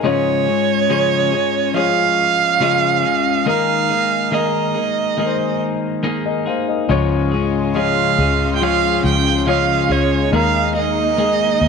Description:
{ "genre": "pop", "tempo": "70 BPM", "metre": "4/4", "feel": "straight", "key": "unclear", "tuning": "A4 = 440 Hz", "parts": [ { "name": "clear concert grand piano", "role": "accompaniment", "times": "0.0-11.7 s", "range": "Ab2 to F5", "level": "-21 LUFS", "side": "left 11 dB", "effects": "none" }, { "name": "twelve-string electric guitar", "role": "arpeggios", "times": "0.0-11.7 s", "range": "Db3 to Ab4", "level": "-22 LUFS", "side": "left 2 dB", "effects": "none" }, { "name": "warm violin", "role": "melody", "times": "0.1-11.7 s", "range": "Db5 to G5", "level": "-17 LUFS", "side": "right 9 dB", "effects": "slapback echo" }, { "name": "rich studio string section", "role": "sustained chords", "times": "6.9-11.7 s", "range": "Db3 to F4", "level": "-24 LUFS", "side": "equal", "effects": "none" }, { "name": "fingered electric bass", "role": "bass", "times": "6.9-11.7 s", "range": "Db2 to Eb2", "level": "-21 LUFS", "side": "equal", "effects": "none" } ], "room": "moderate plate reverb, RT60 2.7 s", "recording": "1960s-style stereo with parts hard left and right", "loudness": "-15 LUFS", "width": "side -5 dB against mid", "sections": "0.0-11.7 A section", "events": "none", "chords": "0.0 Db; 3.5 Absus2/Eb; 6.9 Db; 10.3 Absus2/Eb" }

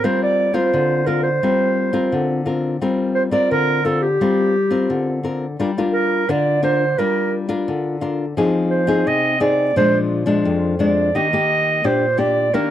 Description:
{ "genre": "samba", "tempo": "86 BPM", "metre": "4/4", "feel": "straight", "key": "G minor", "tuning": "A4 = 440 Hz", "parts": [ { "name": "warm clarinet", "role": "melody", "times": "0.0-12.7 s", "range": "G4 to Eb5", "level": "-18 LUFS", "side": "right 3 dB", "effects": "none" }, { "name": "nylon-string guitar", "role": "accompaniment", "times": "0.0-12.7 s", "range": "F2 to Bb4", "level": "-18 LUFS", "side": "left 3 dB", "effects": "none" } ], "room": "light reverb", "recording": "dry, close 1970s-style studio recording, lossy compression artefacts", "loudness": "-16 LUFS", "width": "side -11 dB against mid", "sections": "0.0-5.6 A section; 5.6-12.7 B section", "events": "clarinet solo 5.6-12.7", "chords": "0.0 Gm7; 8.4 Fm7; 9.8 Bb7; 11.2 Ebmaj7" }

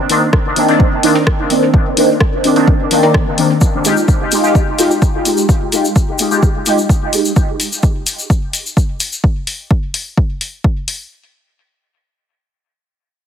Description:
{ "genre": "dub techno", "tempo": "128 BPM", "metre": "4/4", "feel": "straight", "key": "F minor", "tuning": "A4 = 440 Hz", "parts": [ { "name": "resonant sweep polysynth", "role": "stabs", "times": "0.1-7.3 s", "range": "Eb3 to G4", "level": "-13 LUFS", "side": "equal", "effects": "chorus, phaser, sidechain pumping, dub echo" }, { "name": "punchy analog drum machine", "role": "drums", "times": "0.1-11.0 s", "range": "hi-hat, rim click", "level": "-20 LUFS", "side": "left 2 dB", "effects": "overdrive" }, { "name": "electronic kick drum", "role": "drums", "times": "0.3-10.7 s", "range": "none", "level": "-13 LUFS", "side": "equal", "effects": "overdrive" }, { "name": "wavetable chord stab", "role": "riff", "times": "1.2-5.0 s", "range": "C4 to G5", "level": "-23 LUFS", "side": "right 2 dB", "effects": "sidechain pumping, dub echo" }, { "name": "tube shaker", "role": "percussion", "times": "3.6-9.2 s", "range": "none", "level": "-22 LUFS", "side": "left 3 dB", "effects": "none" } ], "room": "light reverb", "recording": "heavily compressed radio sound", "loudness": "-11 LUFS", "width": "side -8 dB against mid", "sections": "0.0-3.6 A section; 3.6-11.1 B section", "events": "filter sweep on analog polysynth 0.0-3.6, 3.6-7.4", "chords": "0.0 Cm9; 3.6 Fm9" }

